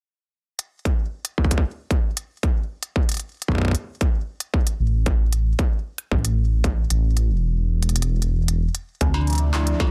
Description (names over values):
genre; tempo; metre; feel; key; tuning
IDM; 114 BPM; 4/4; straight; unclear; A4 = 440 Hz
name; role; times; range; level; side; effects
industrial drum kit; drums; 0.6-9.9 s; handclaps, hi-hat, struck metal; -30 LUFS; equal; overdrive
electronic kick drum; drums; 0.9-9.9 s; none; -23 LUFS; equal; distortion, overdrive
dark detuned saw bass; bass; 4.8-9.7 s; E1 to D2; -22 LUFS; equal; none
phased analog pad; sustained chords; 9.0-9.9 s; C3 to E5; -32 LUFS; equal; phaser, chorus
dark detuned synth bell; arpeggios; 9.0-9.9 s; C4 to F4; -31 LUFS; equal; chorus, phaser, vintage 12-bit sampler grit
bubbling stepped-filter texture; texture; 9.1-9.9 s; D5; -39 LUFS; equal; chorus, built-in reverb, sidechain pumping
room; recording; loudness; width
digital ambience; dense, heavily limited modern master; -22 LUFS; mono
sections
0.6-9.0 A section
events
kick drops out 6.9-9.0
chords
0.6 N.C.; 4.5 A5; 8.7 N.C.; 9.0 Dm9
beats
| 0.59 1.12 1.64 2.17 | 2.69 3.22 3.75 4.27 | 4.80 5.33 5.85 6.38 | 6.91 7.43 7.96 8.48 | 9.01 9.54